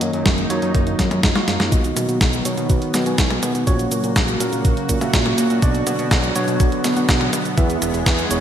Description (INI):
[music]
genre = italo disco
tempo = 123 BPM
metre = 4/4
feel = straight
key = unclear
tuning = A4 = 441 Hz
[part]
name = warm analog pad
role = sustained chords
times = 0.0-8.4 s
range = C#3 to G#4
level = -24 LUFS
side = equal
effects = chorus, shimmer reverb
[part]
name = tine electric piano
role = stabs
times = 0.0-8.4 s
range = A#3 to G#5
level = -23 LUFS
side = right 1 dB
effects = vintage 12-bit sampler grit, low-pass filter, ping-pong delay, shimmer reverb
[part]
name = fat analog bass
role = bass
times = 0.0-8.4 s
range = E1 to B2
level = -24 LUFS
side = equal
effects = ping-pong delay
[part]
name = clean 12-bit digital drum machine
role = drums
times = 0.0-8.4 s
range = cabasa, hi-hat, snare drum, toms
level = -22 LUFS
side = equal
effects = high-pass filter on hats, high-pass filter on toms, high-pass filter on snare, high-pass filter on perc, high-pass filter on room, gated reverb
[part]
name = electronic kick drum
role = drums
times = 0.3-8.2 s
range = none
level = -19 LUFS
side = equal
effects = none
[sound]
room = moderate lush hall reverb, RT60 1.9 s, digital ambience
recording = bright 1980s-style digital production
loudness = -16 LUFS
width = side -9 dB against mid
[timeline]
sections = 0.0-1.7 A section; 1.7-8.4 B section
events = filter sweep on tine electric piano 0.0-1.7; drum fill 1.4-1.7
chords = 0.0 D#madd9/F#; 1.7 B; 3.7 F#/A#; 5.6 Bm; 7.6 E